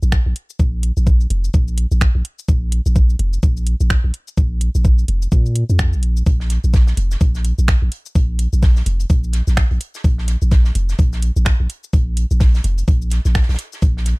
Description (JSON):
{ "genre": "minimal techno", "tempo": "127 BPM", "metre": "4/4", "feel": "swing 59% on 16ths", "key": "unclear", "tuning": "A4 = 440 Hz", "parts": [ { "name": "punchy sub bass", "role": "bass", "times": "0.0-14.1 s", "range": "F1 to Bb2", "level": "-17 LUFS", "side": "equal", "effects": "sidechain pumping" }, { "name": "garage drum kit", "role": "drums", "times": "0.0-14.2 s", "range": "cabasa, finger snaps, hi-hat", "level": "-27 LUFS", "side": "right 2 dB", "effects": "none" }, { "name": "electronic kick drum", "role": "drums", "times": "0.1-13.9 s", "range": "none", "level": "-14 LUFS", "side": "equal", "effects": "none" }, { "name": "loose indie drum kit", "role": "drums", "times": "6.3-14.2 s", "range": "hi-hat, snare drum", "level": "-35 LUFS", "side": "right 2 dB", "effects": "sidechain pumping on hats, high-pass filter on hats, high-pass filter on snare, high-pass filter on room" } ], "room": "little or no reverb", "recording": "dark, warm production", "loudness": "-14 LUFS", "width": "side -27 dB against mid", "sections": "0.0-14.2 A section", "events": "none", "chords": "none", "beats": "0.12 | 0.59 1.07 1.54 2.01 | 2.48 2.96 3.43 3.90 | 4.37 4.85 5.32 5.79 | 6.26 6.74 7.21 7.68 | 8.15 8.63 9.10 9.57 | 10.04 10.52 10.99 11.46 | 11.93 12.41 12.88 13.35 | 13.82" }